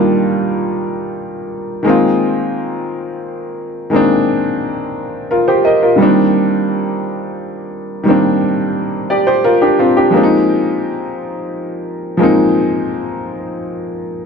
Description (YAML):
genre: R&B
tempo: 58 BPM (dotted quarters)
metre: 6/8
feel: straight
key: unclear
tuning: A4 = 441 Hz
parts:
  - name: clear concert grand piano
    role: solo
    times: 0.0-14.3 s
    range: D3 to Eb5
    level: -13 LUFS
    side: equal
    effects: none
room: moderate echo chamber reverb, RT60 1.8 s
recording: none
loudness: -12 LUFS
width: side -6 dB against mid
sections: 0.0-14.3 A section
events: none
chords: 0.0 Ebmaj9; 1.8 Ab69; 6.0 Cm7; 10.1 Bb7sus4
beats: 0.81 | 1.85 2.88 | 3.92 4.95 | 5.99 7.02 | 8.05 9.09 | 10.12 11.16 | 12.19 13.23